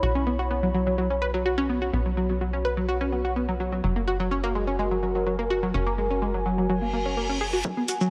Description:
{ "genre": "melodic techno", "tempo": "126 BPM", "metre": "4/4", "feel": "straight", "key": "unclear", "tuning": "A4 = 440 Hz", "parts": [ { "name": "tight sequenced synth", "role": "arpeggios", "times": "0.0-8.1 s", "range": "F#3 to B4", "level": "-29 LUFS", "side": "equal", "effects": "chorus, phaser, sidechain pumping, tape echo" }, { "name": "tight sequencer bass", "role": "bass", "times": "0.0-7.6 s", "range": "F#1 to B1", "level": "-32 LUFS", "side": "equal", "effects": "sidechain pumping" }, { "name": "warbly tape-like pad", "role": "texture", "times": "0.0-8.1 s", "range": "E4 to B5", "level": "-32 LUFS", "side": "equal", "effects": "chorus, built-in reverb, sidechain pumping" }, { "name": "reverse cymbal", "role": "sound effects", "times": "6.8-7.6 s", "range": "none", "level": "-36 LUFS", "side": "equal", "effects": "none" }, { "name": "electronic kick drum", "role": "drums", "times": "7.6-7.7 s", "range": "none", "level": "-35 LUFS", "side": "equal", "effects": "high-pass filter on kick, high-pass filter on room" }, { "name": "electronic shaker and hi-hat", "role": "drums", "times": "7.6-8.1 s", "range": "none", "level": "-33 LUFS", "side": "equal", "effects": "none" } ], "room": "moderate huge ambient reverb, RT60 4.3 s", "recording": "none", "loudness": "-26 LUFS", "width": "mono", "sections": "0.0-7.6 A section", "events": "reverse cymbal 6.8-7.6", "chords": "0.0 Bsus2; 3.8 F#add9", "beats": "| 0.03 0.51 0.98 1.46 | 1.93 2.41 2.89 3.36 | 3.84 4.32 4.79 5.27 | 5.74 6.22 6.70 7.17 | 7.65" }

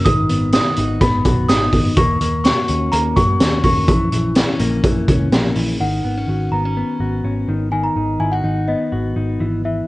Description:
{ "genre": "jangly indie pop", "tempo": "125 BPM", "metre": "4/4", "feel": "straight", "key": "G# minor", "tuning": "A4 = 441 Hz", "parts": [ { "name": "celesta", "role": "melody", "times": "0.0-9.9 s", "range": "D#5 to D#6", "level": "-22 LUFS", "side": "equal", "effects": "slapback echo" }, { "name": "clean electric guitar", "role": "arpeggios", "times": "0.0-9.9 s", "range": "D#3 to F#4", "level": "-21 LUFS", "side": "left 2 dB", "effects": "slapback echo" }, { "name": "vintage muted picked electric bass", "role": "bass", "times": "0.1-9.8 s", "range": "G#1 to F#2", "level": "-21 LUFS", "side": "equal", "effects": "none" }, { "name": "raw garage drum kit", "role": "drums", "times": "0.1-5.7 s", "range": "hi-hat, kick drum, snare drum", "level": "-17 LUFS", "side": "equal", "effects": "none" } ], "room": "light reverb, small room ambience", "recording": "worn, warbling old tape, cassette tape, warbly pitch drift, nothing above 10.4 kHz", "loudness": "-15 LUFS", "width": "side -19 dB against mid", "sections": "0.0-5.8 A section; 5.8-9.9 B section", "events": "none", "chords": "0.1 G#m7; 2.0 D#m7; 3.9 A#dim; 5.8 Badd9/G#; 7.5 G#m7", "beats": "| 0.06 0.53 1.01 1.49 | 1.97 2.45 2.93 3.40 | 3.88 4.36 4.84 5.32 | 5.80 6.28 6.76 7.24 | 7.72 8.21 8.69 9.17 | 9.65" }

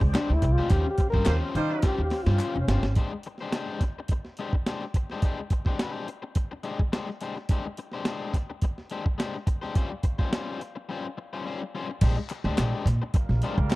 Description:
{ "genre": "funk", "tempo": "106 BPM", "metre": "4/4", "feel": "straight", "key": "unclear", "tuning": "A4 = 439 Hz", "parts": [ { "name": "crunchy overdriven guitar", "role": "accompaniment", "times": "0.0-13.8 s", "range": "G3 to C5", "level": "-34 LUFS", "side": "left 4 dB", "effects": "spring reverb" }, { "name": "mellow tonewheel organ", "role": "sustained chords", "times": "0.0-2.9 s", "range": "Db4 to G5", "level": "-39 LUFS", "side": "right 1 dB", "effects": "slow rotary speaker, overdrive, chorus vibrato" }, { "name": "upright bass", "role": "bass", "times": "0.0-2.9, 12.0-13.7 s", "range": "F1 to Eb3", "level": "-24 LUFS", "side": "equal", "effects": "none" }, { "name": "breakbeat sampler-style drum kit", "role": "drums", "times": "0.0-13.8 s", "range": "crash cymbal, hi-hat, kick drum, snare drum", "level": "-26 LUFS", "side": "right 1 dB", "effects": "none" }, { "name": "mellow trombone", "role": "melody", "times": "0.1-2.9 s", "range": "Db4 to Bb4", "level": "-29 LUFS", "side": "left 2 dB", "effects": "none" }, { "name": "group handclap", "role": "percussion", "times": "0.1-2.5, 12.3-13.8 s", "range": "none", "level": "-42 LUFS", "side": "left 5 dB", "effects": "none" }, { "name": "warm horn section", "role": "second line", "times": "1.3-1.9, 13.1-13.8 s", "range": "G3 to C5", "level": "-34 LUFS", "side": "right 5 dB", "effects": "none" } ], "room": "little or no reverb", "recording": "dry, close 1970s-style studio recording", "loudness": "-25 LUFS", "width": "side -19 dB against mid", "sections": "0.0-3.0 A section; 3.0-12.0 B section; 12.0-13.8 C section", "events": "trombone solo 0.0-3.0; band accent 0.7-3.0; drum fill 1.8-3.0; break 10.9-12.0", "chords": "0.0 Bb13 (rootless); 0.7 Eb13; 3.0 Abmaj7#11; 9.8 Dbmaj7#11/G; 12.0 Bb13", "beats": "0.14 | 0.71 1.27 1.83 2.40 | 2.96 3.53 4.09 4.66 | 5.22 5.79 6.36 6.92 | 7.49 8.06 8.62 9.19 | 9.76 10.32 10.89 11.45 | 12.02 12.58 13.14 13.71" }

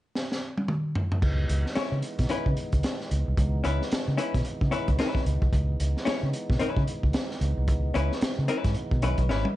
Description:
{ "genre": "funk", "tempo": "112 BPM", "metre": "4/4", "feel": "swing 60% on 16ths", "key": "C# minor", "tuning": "A4 = 441 Hz", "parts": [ { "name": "crunchy breakbeat drum kit", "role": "drums", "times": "0.2-9.5 s", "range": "crash cymbal, hi-hat, kick drum, snare drum, toms", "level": "-28 LUFS", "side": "equal", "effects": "none" }, { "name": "tonewheel organ", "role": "sustained chords", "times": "1.2-9.6 s", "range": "E3 to D#4", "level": "-37 LUFS", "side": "right 1 dB", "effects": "slow rotary speaker, overdrive, chorus vibrato" }, { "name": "vintage muted fingered electric bass", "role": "bass", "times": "1.2-9.4 s", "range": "G#1 to C#3", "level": "-26 LUFS", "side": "equal", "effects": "none" }, { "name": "vintage hollow-body jazz guitar", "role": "accompaniment", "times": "1.8-9.5 s", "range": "C#4 to C#5", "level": "-29 LUFS", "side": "left 4 dB", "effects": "none" } ], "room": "little or no reverb", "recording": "dark, warm production, nothing above 10.3 kHz", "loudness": "-24 LUFS", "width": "side -15 dB against mid", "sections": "0.0-1.2 A section; 1.2-9.6 B section", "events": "drum fill 0.1-1.2, 9.3", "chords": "0.0 N.C.; 1.2 C#m7", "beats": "0.15 0.68 | 1.22 1.76 2.30 2.84 | 3.37 3.91 4.45 4.99 | 5.53 6.06 6.60 7.14 | 7.67 8.21 8.75 9.29" }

